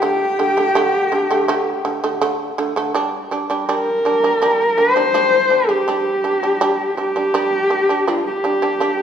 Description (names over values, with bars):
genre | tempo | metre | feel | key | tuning
mongolian traditional, Mongolian folk | 82 BPM | 4/4 | straight | G minor | A4 = 439 Hz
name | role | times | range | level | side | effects
dark horsehead fiddle | melody | 0.0-9.0 s | F4 to C5 | -17 LUFS | left 1 dB | none
dizi | second line | 0.0-2.2 s | G5 | -22 LUFS | left 2 dB | slapback echo
shamisen | arpeggios | 0.0-9.0 s | D3 to D4 | -20 LUFS | right 3 dB | none
room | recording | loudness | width
wet scoring stage reverb, RT60 1.9 s | small room ambience | -15 LUFS | side -8 dB against mid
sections
0.0-2.9 A section; 2.9-9.0 B section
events
none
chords
0.0 D5; 2.9 G5